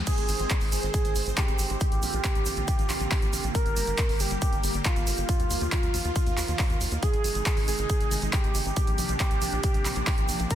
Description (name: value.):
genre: uplifting trance.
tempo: 138 BPM.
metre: 4/4.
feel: straight.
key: unclear.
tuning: A4 = 440 Hz.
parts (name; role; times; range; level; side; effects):
supersaw pad; sustained chords; 0.0-10.6 s; C3 to C5; -35 LUFS; right 1 dB; phaser, sidechain pumping.
tight sequencer bass; bass; 0.0-10.5 s; G1 to Eb2; -31 LUFS; equal; sidechain pumping.
warm velvety synth lead; second line; 0.1-10.6 s; F4 to Bb4; -31 LUFS; right 2 dB; chorus, tape echo.
electronic kick drum; drums; 0.1-10.6 s; none; -26 LUFS; equal; studio reverb.
punchy analog drum machine; drums; 0.1-10.6 s; crash cymbal, handclaps, hi-hat; -32 LUFS; right 1 dB; overdrive, studio reverb.
tube shaker; percussion; 0.1-10.6 s; none; -38 LUFS; right 5 dB; none.
room: little or no reverb.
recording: dense, heavily limited modern master.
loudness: -24 LUFS.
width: side -11 dB against mid.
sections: 0.0-10.6 A section.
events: none.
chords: 0.1 Ab; 1.8 Bbadd9; 3.5 Gm; 5.3 Ebsus2; 7.0 Ab; 8.8 Bbadd9.